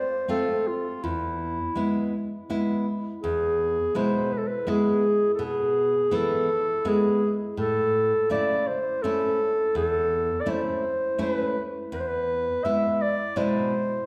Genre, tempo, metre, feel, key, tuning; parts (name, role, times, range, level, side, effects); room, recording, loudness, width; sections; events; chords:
klezmer; 83 BPM; 3/4; straight; A4 = 440 Hz
dark clarinet; melody; 0.0-14.1 s; E4 to E5; -27 LUFS; equal
nylon-string guitar; accompaniment; 0.3-13.7 s; E2 to F4; -31 LUFS; equal
wet recital hall reverb, RT60 1.6 s; recorded in a church or concert hall; -25 LUFS; mono
0.0-3.2 A section; 3.2-14.1 B section
0.0 F; 1.0 E; 7.6 A; 11.9 E